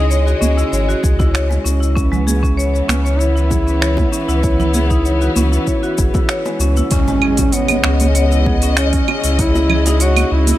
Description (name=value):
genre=organic downtempo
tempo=97 BPM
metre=4/4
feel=straight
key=C# minor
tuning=A4 = 440 Hz
part: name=warm studio string section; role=sustained chords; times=0.0-10.6 s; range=C#3 to D#5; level=-23 LUFS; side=left 2 dB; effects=sidechain pumping
part: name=marimba with medium hard mallets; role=arpeggios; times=0.0-10.6 s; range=G#3 to C#5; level=-21 LUFS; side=equal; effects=vintage 12-bit sampler grit, digital delay
part: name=warm sub bass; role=bass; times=0.0-10.5 s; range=G#1 to C#2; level=-16 LUFS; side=equal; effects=sidechain pumping
part: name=afro-pop drum kit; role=drums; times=0.1-10.6 s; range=cabasa, claves, finger snaps, hi-hat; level=-21 LUFS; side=right 2 dB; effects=none
part: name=congas and bongos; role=percussion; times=0.4-10.6 s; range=none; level=-24 LUFS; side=right 2 dB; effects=none
part: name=electronic kick drum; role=drums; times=1.0-9.5 s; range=none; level=-18 LUFS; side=equal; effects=none
part: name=mellow duduk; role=melody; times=2.9-10.6 s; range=B3 to F#4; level=-20 LUFS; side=equal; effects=ping-pong delay
part: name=impact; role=sound effects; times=6.9-9.4 s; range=none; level=-23 LUFS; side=equal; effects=none
room=little or no reverb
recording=none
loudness=-13 LUFS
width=side -14 dB against mid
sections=0.0-6.9 A section; 6.9-10.6 B section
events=impact 6.9-9.4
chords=0.0 C#m; 2.0 Bsus4/C#; 6.9 C#m7